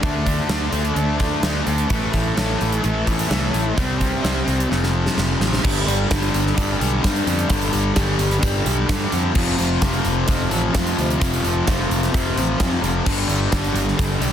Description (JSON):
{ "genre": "rock, shoegaze and dream pop", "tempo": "129 BPM", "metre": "4/4", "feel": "straight", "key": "unclear", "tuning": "A4 = 443 Hz", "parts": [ { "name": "fuzz guitar", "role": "riff", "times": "0.0-14.3 s", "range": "F2 to D4", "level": "-20 LUFS", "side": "left 1 dB", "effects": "distortion, wide subtle chorus" }, { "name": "picked electric bass", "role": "bass", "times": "0.0-14.3 s", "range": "F1 to G2", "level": "-23 LUFS", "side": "equal", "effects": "none" }, { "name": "gated 80s drum kit", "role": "drums", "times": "0.0-14.3 s", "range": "crash cymbal, hi-hat, kick drum, snare drum", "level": "-23 LUFS", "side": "equal", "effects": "none" } ], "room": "little or no reverb", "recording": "dense, heavily limited modern master", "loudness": "-17 LUFS", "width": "side -9 dB against mid", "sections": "0.0-5.6 A section; 5.6-14.3 B section", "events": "drum fill 4.7-5.6", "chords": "0.0 D5; 1.9 A5; 3.8 C5; 4.7 F; 5.6 G5; 9.4 F5; 13.1 G5" }